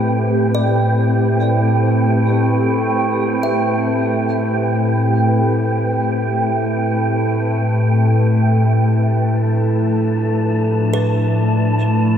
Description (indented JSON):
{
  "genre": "ambient",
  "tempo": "free time",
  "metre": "none",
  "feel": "none",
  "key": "A minor",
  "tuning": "A4 = 441 Hz",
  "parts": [
    { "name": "glassy FM pad", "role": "sustained chords", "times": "0.0-12.2 s", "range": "A2 to B4", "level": "-15 LUFS", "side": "left 1 dB", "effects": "ensemble chorus, built-in reverb" },
    { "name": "overtone-sweeping drone", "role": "drone", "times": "0.0-12.2 s", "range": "A3 to E4", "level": "-24 LUFS", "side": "right 3 dB", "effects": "chorus, built-in reverb" },
    { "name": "wind-like tuned noise texture", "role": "texture", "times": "0.0-12.2 s", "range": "G5 to A5", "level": "-24 LUFS", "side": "right 3 dB", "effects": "built-in reverb, ensemble chorus" },
    { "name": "kalimba", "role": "arpeggios", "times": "0.5-5.4, 10.9-12.2 s", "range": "B4 to E5", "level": "-28 LUFS", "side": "left 2 dB", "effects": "diffuse ambient delay" }
  ],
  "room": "wet plate reverb, RT60 3.5 s",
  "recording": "dreamy mix soaked in reverb",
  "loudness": "-14 LUFS",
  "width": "side -8 dB against mid",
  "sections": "0.0-12.2 A section",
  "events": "filter sweep on ambient pad 0.0-12.2",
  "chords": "0.0 Am7; 8.6 Bm7b5/A"
}